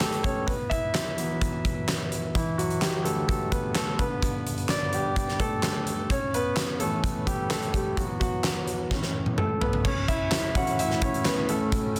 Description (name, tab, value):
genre	piano-driven pop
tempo	128 BPM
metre	4/4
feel	straight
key	unclear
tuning	A4 = 436 Hz
part	warm concert grand piano	accompaniment	0.0-12.0 s	G2 to F#5	-30 LUFS	equal	none
part	huge arena drum kit	drums	0.0-12.0 s	crash cymbal, handclaps, hi-hat, kick drum, snare drum, toms	-30 LUFS	equal	none
part	airy breathy pad	sustained chords	10.4-12.0 s	A2 to F#4	-35 LUFS	equal	chorus
room	moderate studio ambience, RT60 0.5 s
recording	dense, heavily limited modern master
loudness	-27 LUFS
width	mono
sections	0.0-9.9 A section; 9.9-12.0 B section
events	grand piano solo 0.0-9.9, 9.9-12.0; drum fill 8.9-9.9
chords	0.5 Esus2; 2.4 Dsus2; 4.0 G; 6.1 A; 8.0 Esus2; 8.9 A; 11.5 F#m/A